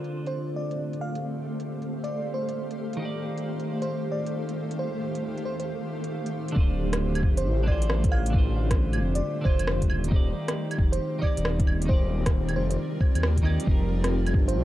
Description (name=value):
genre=future garage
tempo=135 BPM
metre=4/4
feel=swing 65% on 16ths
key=D phrygian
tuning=A4 = 442 Hz
part: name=twelve-string electric guitar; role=accompaniment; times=0.0-14.6 s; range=D3 to D5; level=-33 LUFS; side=equal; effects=sidechain pumping, low-pass filter, tape echo
part: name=granular cloud pad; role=sustained chords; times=0.0-14.6 s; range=Eb3 to F5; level=-34 LUFS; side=equal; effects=built-in reverb, sidechain pumping
part: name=organic electronic drum kit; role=drums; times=0.0-14.5 s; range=claves, hi-hat, rim click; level=-33 LUFS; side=right 1 dB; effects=overdrive, low-pass filter on hats, low-pass filter on snare, low-pass filter on perc, low-pass filter on room
part: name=flickering grainy texture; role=texture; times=0.2-14.6 s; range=G3 to A4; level=-41 LUFS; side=left 1 dB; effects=none
part: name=bell-like FM electric piano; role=melody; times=0.3-14.6 s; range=C5 to F5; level=-34 LUFS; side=right 1 dB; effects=chorus, tremolo, tape echo
part: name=swelling detuned saw bass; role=bass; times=6.6-14.6 s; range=D1 to Eb2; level=-26 LUFS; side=equal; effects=none
part: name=electronic kick drum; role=drums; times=6.6-14.5 s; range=none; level=-23 LUFS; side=equal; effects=none
room=light reverb, digital ambience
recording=dark, warm production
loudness=-24 LUFS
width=side -14 dB against mid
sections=0.0-6.6 A section; 6.6-14.6 B section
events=filter sweep on clean electric guitar 0.0-6.6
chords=0.0 Dm7; 3.0 Ebmaj7; 6.6 Dm7; 10.1 Ebmaj7; 13.7 F9sus4